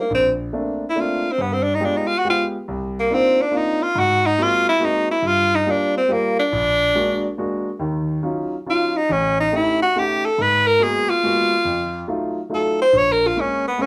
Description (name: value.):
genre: jazz.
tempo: 140 BPM.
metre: 3/4.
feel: swing 66% on 8ths.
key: Eb minor from 7.8 s.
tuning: A4 = 439 Hz.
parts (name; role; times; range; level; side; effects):
bright tenor saxophone; melody; 0.0-13.9 s; Bb3 to Db5; -20 LUFS; equal; none.
warm grand piano; accompaniment; 0.1-13.9 s; A1 to G4; -26 LUFS; equal; none.
room: wet small room reverb, RT60 0.5 s.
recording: heard from further back in the room.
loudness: -20 LUFS.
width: mono.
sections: 0.0-7.8 A section; 7.8-13.9 A section.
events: tenor saxophone solo 0.0-13.9.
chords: 0.1 Bbmaj9; 1.4 G7b9; 2.7 Cm11; 4.0 Ab9; 5.2 Gm7; 6.5 Bbaug7; 7.8 Ebm9; 9.1 A7#11; 10.4 Abm9; 11.7 F7b9; 12.9 Bbm7.